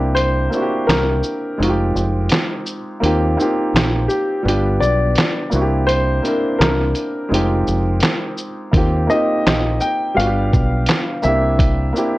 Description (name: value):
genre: lo-fi hip hop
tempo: 84 BPM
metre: 4/4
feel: swing 57% on 16ths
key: unclear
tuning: A4 = 440 Hz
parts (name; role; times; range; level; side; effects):
- felt-muted upright piano; accompaniment; 0.0-12.2 s; G3 to Bb4; -20 LUFS; equal; cassette tape, low-pass filter
- deep dub fingered electric bass; bass; 0.0-11.9 s; F1 to Eb2; -19 LUFS; equal; none
- clear upright piano; melody; 0.1-12.2 s; G4 to G5; -21 LUFS; left 1 dB; low-pass filter, tape echo, plate reverb
- lo-fi sampler-style drum kit; drums; 0.2-12.1 s; handclaps, hi-hat, kick drum, shaker, snare drum; -18 LUFS; equal; none
room: light reverb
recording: worn, warbling old tape, cassette tape, warbly pitch drift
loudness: -15 LUFS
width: side -18 dB against mid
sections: 0.0-12.2 A section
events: break 0.0-8.7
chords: 0.0 C7; 1.6 Fm7; 3.0 Eb6; 4.4 G7; 5.5 C7; 7.3 Fm7; 8.7 Eb6; 10.2 G7; 11.2 C7